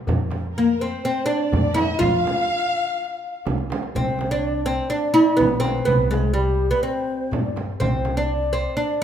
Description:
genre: Arabic maqam ensemble.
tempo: 124 BPM.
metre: 4/4.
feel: straight.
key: F maqam rast, C maqam suznak from 4.0 s.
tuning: A4 = 440 Hz.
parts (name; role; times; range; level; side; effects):
upright bass; bass; 0.1-8.7 s; B1 to G2; -25 LUFS; equal; none.
darbuka; percussion; 0.1-8.4 s; none; -30 LUFS; left 1 dB; none.
frame drum; percussion; 0.1-8.2 s; none; -28 LUFS; right 3 dB; none.
oud; melody; 0.6-9.0 s; G3 to F4; -21 LUFS; right 1 dB; none.
breathy low ney; second line; 0.6-9.0 s; G4 to F5; -28 LUFS; left 4 dB; none.
dark symphonic violin section; second line; 0.6-3.5 s; Bb4 to F5; -29 LUFS; right 2 dB; none.
room: moderate recital hall reverb, RT60 1.5 s.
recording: minimal, uncompressed stereo recording.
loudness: -19 LUFS.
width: side -9 dB against mid.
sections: 0.0-4.0 A section; 4.0-9.0 B section.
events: drum fill 3.5-4.0.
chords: none.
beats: | 0.09 0.57 1.05 1.54 | 2.02 2.51 2.99 3.47 | 3.96 4.44 4.92 5.41 | 5.89 6.38 6.86 7.34 | 7.82 8.31 8.79.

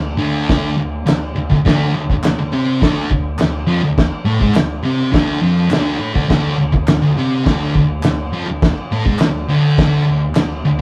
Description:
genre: garage rock duo or trio.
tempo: 103 BPM.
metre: 4/4.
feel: straight.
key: unclear.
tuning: A4 = 440 Hz.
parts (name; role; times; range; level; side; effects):
thick fuzz guitar; riff; 0.0-10.8 s; D2 to C4; -18 LUFS; equal; distortion.
cloth-damped thuddy drum kit; drums; 0.5-10.5 s; crash cymbal, kick drum, snare drum; -20 LUFS; equal; none.
group handclap; percussion; 1.1-10.5 s; none; -34 LUFS; equal; none.
room: moderate studio reverb, RT60 0.8 s.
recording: band playing live in one room.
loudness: -16 LUFS.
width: mono.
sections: 0.0-10.8 A section.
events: none.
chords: 0.0 D5.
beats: 0.48 1.06 | 1.64 2.23 2.81 3.39 | 3.97 4.55 5.13 5.71 | 6.29 6.88 7.46 8.04 | 8.62 9.20 9.78 10.36.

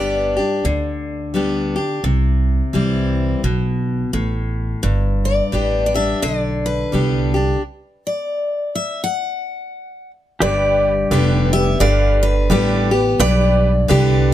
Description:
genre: honky-tonk and classic country.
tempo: 86 BPM.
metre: 4/4.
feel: swing 60% on 8ths.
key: G major, G mixolydian from 10.4 s.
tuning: A4 = 440 Hz.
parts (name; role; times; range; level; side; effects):
picked steel-string acoustic guitar; melody; 0.0-13.9 s; B4 to F#5; -20 LUFS; left 2 dB; none.
picked steel-string acoustic guitar; accompaniment; 0.0-14.3 s; G2 to G4; -20 LUFS; left 2 dB; none.
upright bass; bass; 0.0-14.3 s; F1 to D2; -18 LUFS; right 1 dB; none.
honky-tonk upright piano; accompaniment; 10.4-14.3 s; G4 to F5; -25 LUFS; right 7 dB; none.
pedal steel guitar; sustained chords; 10.4-14.3 s; G4 to D5; -28 LUFS; equal; none.
room: little or no reverb.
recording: close, detailed microphones.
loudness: -16 LUFS.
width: side -12 dB against mid.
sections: 0.0-10.4 A section; 10.4-14.3 B section.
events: stop 7.6-10.4.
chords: 0.0 G; 2.0 C; 4.8 G; 7.6 N.C.; 10.4 G.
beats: 0.65 1.35 | 2.04 2.74 3.44 4.14 | 4.84 5.53 6.23 6.93 | 7.63 8.32 9.02 9.72 | 10.42 11.11 11.81 12.51 | 13.20 13.90.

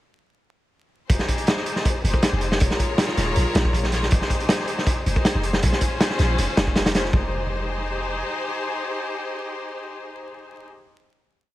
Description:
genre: drum and bass, jungle.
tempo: 159 BPM.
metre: 4/4.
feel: straight.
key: F minor.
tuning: A4 = 441 Hz.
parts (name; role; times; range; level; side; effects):
clear studio string section; sustained chords; 1.1-10.6 s; Db4 to Db5; -27 LUFS; left 2 dB; none.
warm 808-style bass; bass; 1.1-8.2 s; Eb1 to Bb1; -24 LUFS; equal; none.
raw garage drum kit; drums; 1.1-7.2 s; hi-hat, kick drum, snare drum; -21 LUFS; equal; none.
room: little or no reverb.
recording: vinyl crackle.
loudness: -20 LUFS.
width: side -15 dB against mid.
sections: 1.1-7.1 drop; 7.1-10.2 final chord.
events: drop 1.1-7.1.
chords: 1.1 Fm7; 2.6 Eb7sus4; 4.1 Fm7; 5.6 Bbm9; 7.1 Fm7.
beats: | 1.10 1.47 1.85 2.23 | 2.61 2.98 3.36 3.74 | 4.12 4.49 4.87 5.25 | 5.62 6.00 6.38 6.76 | 7.13 7.51 7.89 8.27 | 8.64 9.02 9.40 9.78.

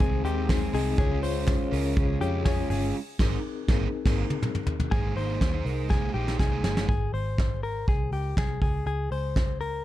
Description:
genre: jangly indie pop.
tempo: 122 BPM.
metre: 4/4.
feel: straight.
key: unclear.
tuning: A4 = 440 Hz.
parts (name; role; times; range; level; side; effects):
crunchy overdriven guitar; accompaniment; 0.0-6.9 s; Db3 to C5; -33 LUFS; right 8 dB; none.
reed electric piano; accompaniment; 0.0-4.9 s; C4 to Eb5; -32 LUFS; left 7 dB; fast tremolo.
direct-recorded clean electric guitar; arpeggios; 0.0-9.8 s; G4 to C5; -33 LUFS; left 5 dB; tape echo.
vintage muted picked electric bass; bass; 0.0-9.8 s; G1 to F2; -29 LUFS; equal; none.
soft brush drum kit; drums; 0.0-9.7 s; crash cymbal, hi-hat, kick drum, snare drum, toms; -26 LUFS; equal; none.
group handclap; percussion; 0.5-2.6 s; none; barely audible; none; none.
room: little or no reverb.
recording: dark, warm production.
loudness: -24 LUFS.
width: side -14 dB against mid.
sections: 0.0-4.9 A section; 4.9-6.9 B section; 6.9-9.8 C section.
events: band accent 2.9-4.9; drum fill 3.9-4.9, 5.9-6.9.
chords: 0.0 Ab; 1.0 Db; 2.9 Abadd9; 6.9 Db5.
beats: 0.00 0.49 | 0.98 1.47 1.96 2.46 | 2.95 3.44 3.93 4.42 | 4.92 5.41 5.90 6.40 | 6.89 7.38 7.88 8.37 | 8.87 9.36.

